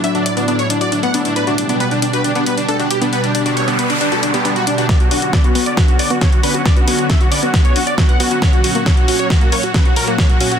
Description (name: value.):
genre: uplifting trance.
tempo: 136 BPM.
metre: 4/4.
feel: straight.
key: B minor.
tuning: A4 = 440 Hz.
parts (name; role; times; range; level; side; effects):
dense compressed supersaw; melody; 0.0-10.6 s; D4 to F#5; -19 LUFS; right 1 dB; sidechain pumping, low-pass filter, dub echo.
lush unison pad; sustained chords; 0.0-10.6 s; A2 to G4; -21 LUFS; equal; chorus, sidechain pumping.
analog pluck; arpeggios; 0.0-10.6 s; A#3 to F#4; -23 LUFS; left 4 dB; chorus, sidechain pumping, dub echo.
big-room dance drum kit; drums; 0.0-10.6 s; hi-hat, snare drum; -21 LUFS; left 1 dB; none.
noise sweep; sound effects; 3.5-4.9 s; none; -23 LUFS; right 3 dB; none.
electronic kick drum; drums; 4.9-10.3 s; none; -13 LUFS; equal; none.
room: light reverb.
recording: dense, heavily limited modern master.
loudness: -12 LUFS.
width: side -8 dB against mid.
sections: 0.0-4.9 A section; 4.9-10.6 B section.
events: filter sweep on synth pluck 0.0-4.9; filter sweep on analog synth pad 0.0-4.9; noise sweep 3.5-4.9; build-up 4.9-10.6; drum fill 4.9-10.6; filter sweep on supersaw synth 4.9-10.6.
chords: 0.0 D; 1.4 G; 4.9 Bmadd9; 8.4 F#.